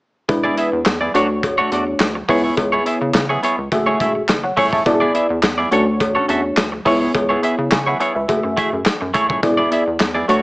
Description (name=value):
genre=early-eighties boogie funk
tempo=105 BPM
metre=4/4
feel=straight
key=unclear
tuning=A4 = 440 Hz
part: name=mellow FM electric piano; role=accompaniment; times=0.3-10.4 s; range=G#3 to C#6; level=-18 LUFS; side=equal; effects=chorus
part: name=semi-hollow electric guitar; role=riff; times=0.3-10.4 s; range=A3 to E5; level=-19 LUFS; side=right 1 dB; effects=wide subtle chorus
part: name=rubbery square bass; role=bass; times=0.3-10.4 s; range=D#1 to C#3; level=-26 LUFS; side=equal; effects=none
part: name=modern studio drum kit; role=drums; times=0.3-10.4 s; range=handclaps, hi-hat, kick drum, snare drum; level=-21 LUFS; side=equal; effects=none
part: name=cowbell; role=percussion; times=0.3-10.1 s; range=none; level=-24 LUFS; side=left 1 dB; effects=none
room=light reverb, small room ambience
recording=small speaker sound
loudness=-15 LUFS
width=side -23 dB against mid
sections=0.3-10.4 A section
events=none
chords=0.3 E7; 1.1 Dmaj7; 2.3 C#m7; 3.7 F#m9; 4.9 E7; 5.7 Dmaj7; 6.9 C#m7; 8.3 F#m9; 9.4 E7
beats=| 0.29 0.86 1.43 2.00 | 2.58 3.15 3.72 4.29 | 4.86 5.43 6.00 6.58 | 7.15 7.72 8.29 8.86 | 9.43 10.00